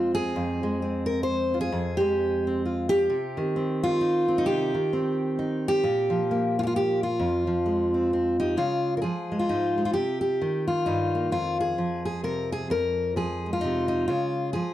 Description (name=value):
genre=folk, solo fingerstyle acoustic guitar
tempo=131 BPM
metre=3/4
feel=swing 60% on 8ths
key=F minor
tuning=A4 = 441 Hz
part: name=fingerpicked steel-string acoustic guitar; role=solo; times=0.0-14.7 s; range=F2 to C5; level=-23 LUFS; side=equal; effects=none
room=moderate studio reverb, RT60 0.5 s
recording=dark, warm production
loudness=-23 LUFS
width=side -13 dB against mid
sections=0.0-8.6 A section; 8.6-14.7 B section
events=none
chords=0.0 Fm; 3.1 Cm; 5.8 Bb5; 7.2 Fm; 8.6 Dbadd9; 9.9 Cm; 11.3 Fm7; 14.1 Db